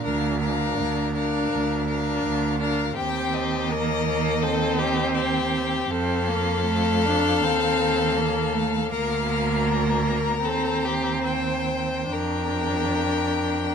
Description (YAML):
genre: classical, slow romantic movement for string quartet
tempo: 66-84 BPM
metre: 4/4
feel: rubato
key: Bb major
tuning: A4 = 440 Hz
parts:
  - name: rich violin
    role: melody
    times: 0.0-13.7 s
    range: Eb5 to Bb5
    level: -29 LUFS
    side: left 8 dB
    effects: none
  - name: rich violin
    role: second line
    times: 0.0-13.7 s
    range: G4 to C5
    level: -27 LUFS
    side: left 6 dB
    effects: none
  - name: rich viola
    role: accompaniment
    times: 0.0-13.7 s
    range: A3 to D4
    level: -27 LUFS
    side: right 2 dB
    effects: none
  - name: rich cello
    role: bass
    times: 0.0-13.7 s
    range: D2 to F2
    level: -26 LUFS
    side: right 4 dB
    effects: none
room: moderate large studio reverb, RT60 0.9 s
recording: none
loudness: -21 LUFS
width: side -7 dB against mid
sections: 0.0-13.7 A section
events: none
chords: 0.0 Bb/D; 3.0 Cm7/Eb; 5.9 F; 7.4 F7/Eb; 8.9 Bb/D; 10.4 Cm7/Eb; 12.1 Fsus4